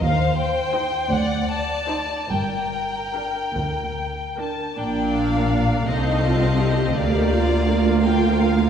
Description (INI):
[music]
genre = classical, slow romantic movement for string orchestra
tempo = 47-58 BPM (dotted quarters)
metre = 6/8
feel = rubato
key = G minor, Bb major from 4.8 s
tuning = A4 = 439 Hz
[part]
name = dark chamber violin section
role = melody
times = 0.0-8.7 s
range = D5 to A5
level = -26 LUFS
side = left 4 dB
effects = none
[part]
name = clear chamber violin section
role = second line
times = 0.0-8.7 s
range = A4 to F5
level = -29 LUFS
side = left 1 dB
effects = none
[part]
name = clear studio cello section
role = bass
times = 0.0-8.7 s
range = C2 to Bb2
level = -24 LUFS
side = right 3 dB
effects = none
[part]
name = rich chamber double bass section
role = bass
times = 0.0-8.7 s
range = G1 to Eb2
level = -25 LUFS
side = right 1 dB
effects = none
[part]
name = clear studio viola section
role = accompaniment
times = 0.7-8.7 s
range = Bb3 to C5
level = -25 LUFS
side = right 2 dB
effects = none
[sound]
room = wet scoring stage reverb, RT60 2.1 s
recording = heard from further back in the room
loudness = -19 LUFS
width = side -8 dB against mid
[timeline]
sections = 0.0-4.8 A section; 4.8-8.7 B section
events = none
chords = 0.0 Cm/Eb; 1.1 D5; 2.3 Gm; 4.8 Bb; 5.9 F7/C; 7.0 Bb/D